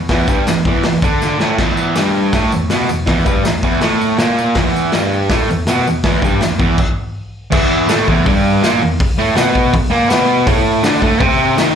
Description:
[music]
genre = garage rock duo or trio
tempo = 162 BPM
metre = 4/4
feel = straight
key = E minor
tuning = A4 = 442 Hz
[part]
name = fuzz guitar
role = riff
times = 0.0-11.8 s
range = E2 to D#4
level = -14 LUFS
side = equal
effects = distortion, slapback echo
[part]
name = raw garage drum kit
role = drums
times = 0.1-11.7 s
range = crash cymbal, hi-hat, kick drum, snare drum, splash cymbal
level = -17 LUFS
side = equal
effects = none
[part]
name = tambourine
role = percussion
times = 0.1-11.7 s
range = none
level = -33 LUFS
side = left 2 dB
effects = none
[sound]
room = moderate club reverb, RT60 0.7 s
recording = live gig heard through the venue's PA, club reverb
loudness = -12 LUFS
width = side -8 dB against mid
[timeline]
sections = 0.0-7.5 A section; 7.5-11.8 B section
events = drum fill 1.2-1.6; stop 6.8-7.5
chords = 0.0 Em; 10.5 Amadd11

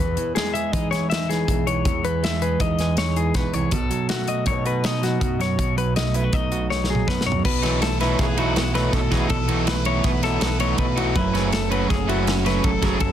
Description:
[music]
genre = math rock and midwest emo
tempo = 162 BPM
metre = 5/4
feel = straight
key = unclear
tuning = A4 = 441 Hz
[part]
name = semi-hollow electric guitar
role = accompaniment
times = 0.0-13.1 s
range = E2 to G#4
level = -25 LUFS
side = right 6 dB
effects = none
[part]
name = clean electric guitar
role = arpeggios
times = 0.0-13.1 s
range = F#4 to E5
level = -26 LUFS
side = left 7 dB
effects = analog delay
[part]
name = growling fingered electric bass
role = bass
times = 0.0-13.1 s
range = F#1 to E3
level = -26 LUFS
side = equal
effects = overdrive
[part]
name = modern studio drum kit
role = drums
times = 0.2-13.1 s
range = crash cymbal, hi-hat, kick drum, ride cymbal, snare drum, toms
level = -25 LUFS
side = equal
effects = none
[part]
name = crunchy overdriven guitar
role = riff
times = 7.6-13.1 s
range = B2 to D#4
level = -27 LUFS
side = right 1 dB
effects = none
[sound]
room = little or no reverb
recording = dense, heavily limited modern master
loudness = -19 LUFS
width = side -10 dB against mid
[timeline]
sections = 0.0-7.4 A section; 7.4-13.1 B section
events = drum fill 6.7-7.4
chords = 0.0 Emaj7; 3.7 B7; 11.2 F#m7

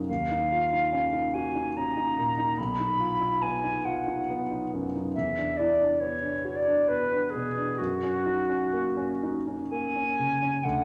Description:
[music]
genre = classical, impressionist duo for flute and grand piano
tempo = 59-73 BPM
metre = 3/4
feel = rubato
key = F# major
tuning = A4 = 440 Hz
[part]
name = warm concert grand piano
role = accompaniment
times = 0.0-10.8 s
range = B1 to F#4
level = -33 LUFS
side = equal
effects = none
[part]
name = silver concert flute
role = melody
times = 0.1-10.8 s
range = F#4 to B5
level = -29 LUFS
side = equal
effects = none
[sound]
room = wet recital hall reverb, RT60 1.5 s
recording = none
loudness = -28 LUFS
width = mono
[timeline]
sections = 0.0-10.6 A section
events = none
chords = 0.1 D#m9; 2.6 B; 5.1 Esus2; 7.8 F#69

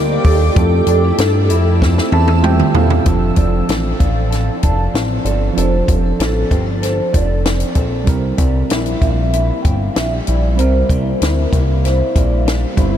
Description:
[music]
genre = indie pop, bedroom pop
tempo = 96 BPM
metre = 4/4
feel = straight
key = F major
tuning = A4 = 440 Hz
[part]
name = warbly nostalgic lead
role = melody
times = 0.0-2.4 s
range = A4 to Bb4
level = -22 LUFS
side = right 1 dB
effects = analog chorus, ping-pong delay
[part]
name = electric guitar through a small old amp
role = accompaniment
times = 0.0-13.0 s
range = C3 to A4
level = -23 LUFS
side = left 4 dB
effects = ensemble chorus, warbly pitch drift
[part]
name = tine electric piano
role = accompaniment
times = 0.0-13.0 s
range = F3 to A5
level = -23 LUFS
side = right 6 dB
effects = cassette tape
[part]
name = granular cloud pad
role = sustained chords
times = 0.0-3.0 s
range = G4 to E6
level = -24 LUFS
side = right 1 dB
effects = built-in reverb
[part]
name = chorused synth bass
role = bass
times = 0.0-13.0 s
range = F1 to G2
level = -16 LUFS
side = equal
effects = none
[part]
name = compact cocktail drum kit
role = drums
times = 0.2-12.9 s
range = hi-hat, kick drum, snare drum, toms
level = -18 LUFS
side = equal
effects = none
[part]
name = vibraphone with soft mallets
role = second line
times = 3.4-12.3 s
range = A4 to A5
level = -23 LUFS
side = right 2 dB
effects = lush chorus, ping-pong delay
[sound]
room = moderate huge ambient reverb, RT60 8.0 s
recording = dreamy mix soaked in reverb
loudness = -12 LUFS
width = side -10 dB against mid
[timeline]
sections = 0.0-3.1 A section; 3.1-13.0 B section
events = drum fill 1.8-3.1; tine electric piano fill 1.8-3.1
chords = 0.0 Ebmaj7; 0.6 Fmaj7; 3.1 F6; 8.1 C7

